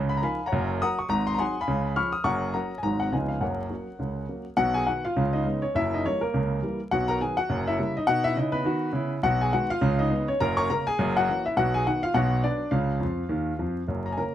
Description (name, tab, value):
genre	jazz, stride piano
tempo	206 BPM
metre	4/4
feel	swing 59% on 8ths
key	F# major, B major from 4.6 s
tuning	A4 = 440 Hz
part	warm grand piano	solo	0.0-14.3 s	F#1 to E#6	-24 LUFS	equal	none
room	light reverb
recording	close, detailed microphones, vinyl crackle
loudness	-24 LUFS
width	side -11 dB against mid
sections	0.0-4.6 A section; 4.6-13.9 B section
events	grand piano fill 13.0-13.9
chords	0.5 F#; 1.1 G#5; 1.7 C#7; 2.2 F#; 2.8 G#7; 3.1 C#9; 3.4 F#; 4.6 B; 5.2 C#7; 5.7 F#7b9; 6.9 B; 7.5 F#7b9; 8.1 B; 9.2 G#m/B; 9.8 C#7; 10.4 F#; 11.0 F#7; 11.6 B; 12.1 Bm; 12.7 C#